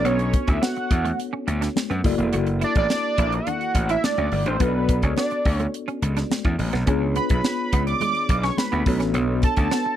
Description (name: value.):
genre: polished 1980s jazz-funk pop.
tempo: 106 BPM.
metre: 4/4.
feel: straight.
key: unclear.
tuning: A4 = 440 Hz.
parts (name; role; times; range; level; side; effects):
fat analog lead; melody; 0.0-10.0 s; B4 to D6; -25 LUFS; right 2 dB; chorus, phaser, slapback echo.
mellow tine electric piano; accompaniment; 0.0-10.0 s; A#3 to D5; -27 LUFS; left 2 dB; medium stereo tremolo, wide subtle chorus.
gritty slap bass; bass; 0.0-9.7 s; E1 to F#2; -24 LUFS; equal; overdrive.
semi-hollow electric guitar; riff; 0.1-9.9 s; G#3 to F#4; -30 LUFS; right 6 dB; ensemble chorus.
tight funk drum kit; drums; 0.1-9.8 s; hi-hat, kick drum, snare drum; -23 LUFS; equal; none.
congas; percussion; 0.1-9.8 s; none; -34 LUFS; left 16 dB; none.
room: little or no reverb.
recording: dry, close 1970s-style studio recording.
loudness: -20 LUFS.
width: side -11 dB against mid.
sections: 0.0-10.0 A section.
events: none.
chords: 0.0 Bm9; 2.0 F#7alt; 4.6 Bm9; 6.9 C#7b9; 8.9 Bm9.